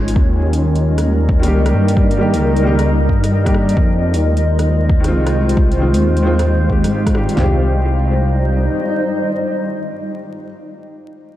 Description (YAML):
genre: future garage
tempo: 133 BPM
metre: 4/4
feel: swing 64% on 16ths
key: C phrygian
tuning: A4 = 440 Hz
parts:
  - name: granular cloud pad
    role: sustained chords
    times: 0.0-10.4 s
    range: G3 to F5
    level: -19 LUFS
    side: equal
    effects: built-in reverb, sidechain pumping
  - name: dark detuned saw bass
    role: bass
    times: 0.0-8.7 s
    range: Ab1 to Ab2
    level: -15 LUFS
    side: equal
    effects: sidechain pumping
  - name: deep house drum kit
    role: drums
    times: 0.1-7.4 s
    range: hi-hat, rim click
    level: -30 LUFS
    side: left 1 dB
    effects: overdrive, small room ambience
  - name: deep house drum kit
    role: drums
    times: 0.2-7.5 s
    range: kick drum, snare drum, toms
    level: -16 LUFS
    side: equal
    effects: overdrive, small room ambience
  - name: felt-muted upright piano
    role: accompaniment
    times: 1.4-10.5 s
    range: Eb3 to G4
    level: -22 LUFS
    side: equal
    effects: sidechain pumping, tape echo
room: moderate lush hall reverb, RT60 1.9 s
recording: dreamy mix soaked in reverb, vinyl crackle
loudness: -13 LUFS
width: side -13 dB against mid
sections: 0.0-7.4 A section; 7.4-11.0 B section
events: none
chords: 0.2 Eb; 3.8 Fm7; 7.4 Cm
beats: | 0.16 0.61 1.06 1.51 | 1.96 2.41 2.86 3.31 | 3.77 4.22 4.67 5.12 | 5.57 6.02 6.47 6.92 | 7.37 7.83 8.28 8.73 | 9.18 9.63 10.08